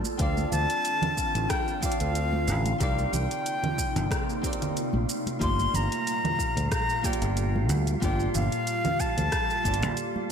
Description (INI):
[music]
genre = sunset chillout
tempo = 92 BPM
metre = 4/4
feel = swing 54% on 16ths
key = G minor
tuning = A4 = 436 Hz
[part]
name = nylon-string guitar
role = accompaniment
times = 0.0-10.3 s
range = A3 to D5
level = -34 LUFS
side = moving between left 1 dB and right 6 dB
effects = auto-pan, digital delay
[part]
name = ethereal airy pad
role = sustained chords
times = 0.0-10.3 s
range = Bb2 to D5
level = -34 LUFS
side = equal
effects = ensemble chorus, built-in reverb
[part]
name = deep house drum kit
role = drums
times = 0.0-10.1 s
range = congas, hi-hat, rim click, shaker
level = -34 LUFS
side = right 3 dB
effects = overdrive, small room reverb, gated reverb
[part]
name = congas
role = percussion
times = 0.0-10.3 s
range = none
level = -36 LUFS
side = right 3 dB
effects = none
[part]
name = wind-like tuned noise texture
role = texture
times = 0.0-10.3 s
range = F4 to A5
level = -39 LUFS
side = equal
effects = built-in reverb, lush chorus
[part]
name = breathy silver concert flute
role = melody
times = 0.2-10.3 s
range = F5 to C6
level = -30 LUFS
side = left 2 dB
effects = digital delay
[part]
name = fingered electric bass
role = bass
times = 0.2-9.9 s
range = G1 to D2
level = -27 LUFS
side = equal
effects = none
[part]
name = electronic kick drum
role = drums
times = 0.2-9.8 s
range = none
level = -31 LUFS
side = equal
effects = overdrive, small room reverb
[sound]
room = moderate lush hall reverb, RT60 2.1 s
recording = bright 1980s-style digital production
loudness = -24 LUFS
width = side -7 dB against mid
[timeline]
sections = 0.2-10.3 A section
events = none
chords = 0.2 Dm7; 2.8 Cm9; 5.4 Gm9